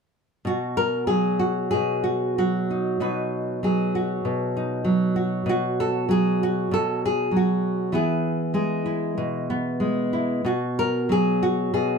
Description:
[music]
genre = folk, solo fingerstyle acoustic guitar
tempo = 96 BPM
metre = 4/4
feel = rubato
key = B major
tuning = A4 = 440 Hz
[part]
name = nylon-string guitar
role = solo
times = 0.4-12.0 s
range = B2 to B4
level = -21 LUFS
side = equal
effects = none
[sound]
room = moderate small room reverb, RT60 0.6 s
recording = dark, warm production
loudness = -21 LUFS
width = side -5 dB against mid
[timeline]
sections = 0.5-12.0 A section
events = none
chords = 0.5 B; 5.5 B5; 7.9 E; 10.5 B5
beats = | 0.46 1.10 1.74 2.38 | 3.00 3.63 4.25 4.86 | 5.48 6.09 6.71 7.32 | 7.94 8.55 9.18 9.81 | 10.45 11.09 11.72

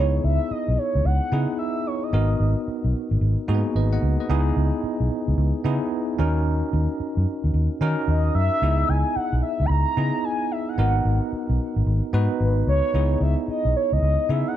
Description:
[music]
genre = R&B, new jack swing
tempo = 111 BPM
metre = 4/4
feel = swing 63% on 16ths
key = C# dorian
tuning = A4 = 440 Hz
[part]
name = mellow horn-like synth lead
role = melody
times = 0.0-2.8, 8.1-14.6 s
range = B4 to B5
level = -26 LUFS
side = right 1 dB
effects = chorus, phaser, plate reverb
[part]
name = bell-like tine electric piano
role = accompaniment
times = 0.0-14.6 s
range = A#3 to F#5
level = -26 LUFS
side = right 1 dB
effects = medium stereo tremolo, plate reverb
[part]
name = vintage muted fingered electric bass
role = bass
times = 0.0-14.4 s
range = G#1 to D#3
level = -21 LUFS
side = equal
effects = none
[sound]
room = light reverb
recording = dark, warm production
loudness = -20 LUFS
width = side -11 dB against mid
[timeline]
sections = 0.0-14.6 A section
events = none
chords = 0.0 C#m7; 2.1 G#m7; 4.3 C#m7; 6.2 D#m7; 8.6 C#m7; 10.8 G#m7; 12.9 C#m7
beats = 0.51 1.05 1.59 | 2.13 2.67 3.21 3.75 | 4.29 4.83 5.37 5.91 | 6.45 6.99 7.54 8.07 | 8.62 9.16 9.70 10.24 | 10.78 11.32 11.86 12.40 | 12.94 13.48 14.02 14.56

